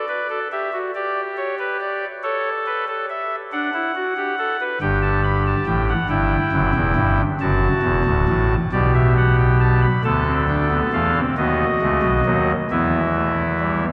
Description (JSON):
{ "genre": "classical, baroque-style 4-part fugue for pipe organ", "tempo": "46 BPM (dotted quarters)", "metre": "6/8", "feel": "straight", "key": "G major", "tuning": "A4 = 440 Hz", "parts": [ { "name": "pipe organ, soft reed", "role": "solo", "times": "0.0-13.9 s", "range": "D1 to B5", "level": "-20 LUFS", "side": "equal", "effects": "none" } ], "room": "wet cathedral reverb, RT60 6.8 s", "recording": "dark, warm production", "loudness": "-20 LUFS", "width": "mono", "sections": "0.0-10.0 A section; 10.0-13.9 B section", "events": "none", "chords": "0.0 D; 0.9 G; 2.2 A; 3.5 D; 4.8 G; 6.1 Emadd9; 7.4 D; 8.7 G/B; 10.0 Bm7b5/D; 11.4 B7; 12.7 Esus4", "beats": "0.94 | 2.22 3.51 | 4.81 6.10 | 7.40 8.73 | 10.04 11.37 | 12.69" }